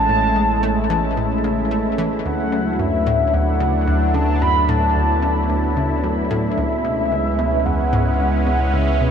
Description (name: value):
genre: ambient, sequencer-driven space music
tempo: 111 BPM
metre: 4/4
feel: straight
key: unclear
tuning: A4 = 440 Hz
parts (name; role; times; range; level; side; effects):
- mellow horn-like synth lead; melody; 0.0-9.1 s; E5 to B5; -22 LUFS; equal; lush chorus, ping-pong delay
- sweeping resonant pad; sustained chords; 0.0-9.1 s; F#3 to B4; -22 LUFS; equal; chorus
- warm sub bass; bass; 0.0-9.1 s; A1 to D2; -22 LUFS; left 1 dB; none
- wind-like tuned noise texture; texture; 0.0-9.1 s; B3 to B4; -31 LUFS; right 2 dB; built-in reverb
- analog pluck; riff; 0.1-9.1 s; C#2 to A3; -25 LUFS; equal; chorus, ping-pong delay
room: wet cathedral reverb, RT60 7.2 s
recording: in a vast, echoing space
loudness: -16 LUFS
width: side -7 dB against mid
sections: 0.0-9.1 A section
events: fade-in on synth texture 0.0-9.1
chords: 0.0 Amaj7; 2.3 Dadd9; 6.6 C#m7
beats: | 0.09 0.63 1.17 1.71 | 2.25 2.79 3.33 3.88 | 4.42 4.96 5.50 6.04 | 6.58 7.12 7.66 8.20 | 8.74